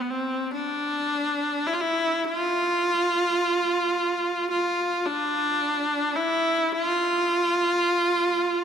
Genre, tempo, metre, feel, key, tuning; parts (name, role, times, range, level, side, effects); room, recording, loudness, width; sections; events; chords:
caucasian folk; 53 BPM; 4/4; rubato; A4 = 441 Hz
clear viola; solo; 0.0-8.6 s; B3 to F4; -22 LUFS; equal
wet cathedral reverb, RT60 4.5 s; -22 LUFS; side -8 dB against mid
0.0-8.6 A section